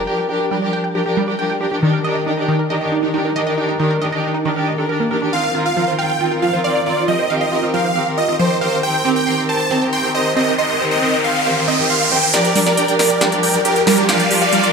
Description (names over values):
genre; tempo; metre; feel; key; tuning
uplifting trance; 137 BPM; 4/4; straight; G minor; A4 = 440 Hz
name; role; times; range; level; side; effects
rich chamber string section; sustained chords; 0.0-14.7 s; Eb3 to Bb4; -20 LUFS; left 1 dB; none
wide unison pluck; arpeggios; 0.0-14.7 s; Eb3 to C6; -20 LUFS; right 2 dB; phaser, digital delay
sub drop and riser; sound effects; 0.0-0.1, 9.7-14.7 s; none; -21 LUFS; equal; none
supersaw chords; melody; 5.3-14.7 s; G4 to A5; -18 LUFS; right 1 dB; phaser, digital delay
big-room dance drum kit; drums; 12.3-14.7 s; hi-hat, snare drum; -20 LUFS; equal; high-pass filter on hats, low-pass filter on hats, high-pass filter on snare, low-pass filter on snare, high-pass filter on cymbals, low-pass filter on cymbals, high-pass filter on room, low-pass filter on room
room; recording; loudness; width
moderate lush hall reverb, RT60 2.1 s; none; -14 LUFS; side -5 dB against mid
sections
0.0-12.3 A section; 12.3-14.7 B section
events
filter sweep on synth pluck 0.0-12.3; riser 9.7-12.3, 12.3-14.7; build-up 12.3-14.7; drum fill 12.3-14.7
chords
0.0 Gm7; 1.8 Ebmaj7; 5.3 F7sus4; 8.8 Cm7; 12.3 Gm7